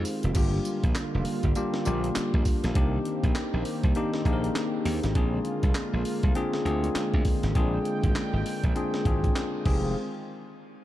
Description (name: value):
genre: R&B, new jack swing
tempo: 100 BPM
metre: 4/4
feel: swing 60% on 16ths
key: unclear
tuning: A4 = 441 Hz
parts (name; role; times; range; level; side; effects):
- bell-like tine electric piano; accompaniment; 0.0-10.0 s; Bb3 to Bb4; -30 LUFS; left 3 dB; shimmer reverb
- warm analog pad; sustained chords; 0.0-9.9 s; D3 to G5; -32 LUFS; right 1 dB; chorus, shimmer reverb
- glassy slap bass; bass; 0.0-9.9 s; F1 to Eb2; -28 LUFS; equal; none
- breakbeat sampler-style drum kit; drums; 0.1-9.8 s; crash cymbal, handclaps, hi-hat, kick drum, snare drum, tambourine; -28 LUFS; equal; none
room: moderate plate reverb, RT60 2.8 s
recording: dark, warm production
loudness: -24 LUFS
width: side -14 dB against mid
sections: 0.4-10.0 A section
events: none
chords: 0.4 Gm7; 2.8 Cm7; 5.2 Bb7; 9.7 Fm7; 10.0 N.C.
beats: | 0.35 0.95 1.55 2.15 | 2.75 3.35 3.95 4.55 | 5.15 5.75 6.35 6.95 | 7.55 8.15 8.75 9.35 | 9.95